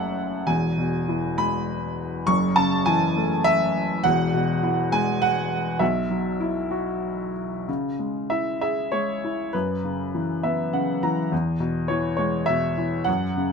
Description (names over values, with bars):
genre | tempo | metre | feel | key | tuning
classical, lyrical solo piano | 92-104 BPM | 3/4 | rubato | E major, C# minor from 7.7 s | A4 = 440 Hz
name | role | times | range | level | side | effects
clear baby grand piano | solo | 0.0-13.5 s | E1 to C#6 | -22 LUFS | equal | none
room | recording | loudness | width
light reverb | close, detailed microphones | -21 LUFS | side -5 dB against mid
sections
0.0-7.7 A section; 7.7-13.5 B section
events
grand piano fill 10.1-11.3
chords
0.5 E; 2.3 F#m7; 4.0 E; 5.8 Bsus4; 7.7 C#m; 9.5 F#7sus4; 11.3 E6